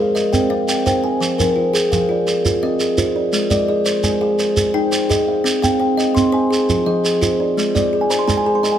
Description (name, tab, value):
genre	southern african traditional, mbira-style interlocking cycle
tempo	113 BPM (dotted quarters)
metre	12/8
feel	straight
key	F dorian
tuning	A4 = 441 Hz
part	kalimba	arpeggios	0.0-8.8 s	F3 to C6	-17 LUFS	left 2 dB	none
part	kalimba	arpeggios	0.0-8.8 s	F3 to C6	-20 LUFS	right 4 dB	none
part	shekere	percussion	0.2-8.8 s	none	-22 LUFS	right 2 dB	none
room	moderate recital hall reverb, RT60 1.7 s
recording	none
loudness	-15 LUFS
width	side -10 dB against mid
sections	0.0-1.2 A section; 1.2-8.8 B section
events	kalimba fill 7.8-8.8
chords	0.2 Cm; 1.2 Fm; 3.3 Ab; 5.5 Cm; 6.5 Fm; 7.6 Ab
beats	0.15 0.69 | 1.21 1.74 2.27 2.80 | 3.33 3.86 4.39 4.92 | 5.45 5.98 6.51 7.04 | 7.58 8.11 8.64